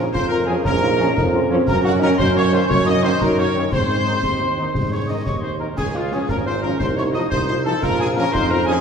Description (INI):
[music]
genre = military-style march for wind band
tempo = 117 BPM (dotted quarters)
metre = 6/8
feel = straight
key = unclear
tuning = A4 = 440 Hz
[part]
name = mellow trumpet section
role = melody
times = 0.0-8.8 s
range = F4 to Eb5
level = -24 LUFS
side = equal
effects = none
[part]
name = mellow woodwind section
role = second line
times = 0.0-8.7 s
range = F4 to Eb5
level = -28 LUFS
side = equal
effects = none
[part]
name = warm euphonium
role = second line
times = 0.0-8.8 s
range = C4 to F4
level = -25 LUFS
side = right 2 dB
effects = none
[part]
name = mellow French horn section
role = accompaniment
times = 0.0-8.7 s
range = Ab3 to F4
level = -29 LUFS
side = left 3 dB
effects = none
[part]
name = bright trombone section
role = sustained chords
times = 0.0-8.7 s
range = Eb3 to Eb4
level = -28 LUFS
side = right 1 dB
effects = none
[part]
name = warm tuba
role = bass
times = 0.0-8.8 s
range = Ab1 to Ab2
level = -21 LUFS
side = right 1 dB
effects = none
[part]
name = mellow hollow piccolo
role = second line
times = 0.1-8.7 s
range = F5 to Eb6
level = -27 LUFS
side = left 3 dB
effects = none
[part]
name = concert snare drum, concert bass drum and clash cymbals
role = drums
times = 0.1-8.5 s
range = none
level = -26 LUFS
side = left 1 dB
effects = none
[sound]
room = wet scoring stage reverb, RT60 1.9 s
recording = heard from further back in the room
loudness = -16 LUFS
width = side -6 dB against mid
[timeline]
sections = 0.0-8.8 A section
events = none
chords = 0.0 Bbm; 1.7 Ebm7/Gb; 3.7 Ab; 5.8 Db; 6.8 F7/C; 7.8 Bbm